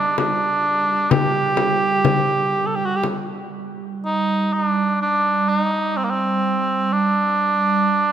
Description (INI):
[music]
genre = caucasian folk, Caucasian lament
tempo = 63 BPM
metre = 3/4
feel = rubato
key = unclear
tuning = A4 = 441 Hz
[part]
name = warm cor anglais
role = melody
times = 0.0-8.1 s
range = Bb3 to A4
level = -19 LUFS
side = right 2 dB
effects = none
[part]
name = soft additive organ-like pad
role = drone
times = 0.0-8.1 s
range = G3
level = -24 LUFS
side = right 4 dB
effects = ensemble chorus, built-in reverb
[part]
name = frame drum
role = percussion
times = 0.2-3.3 s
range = none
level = -23 LUFS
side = left 5 dB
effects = none
[sound]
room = moderate church reverb, RT60 3.5 s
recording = none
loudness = -17 LUFS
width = side -10 dB against mid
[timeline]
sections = 0.0-4.0 A section; 4.0-8.1 B section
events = none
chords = none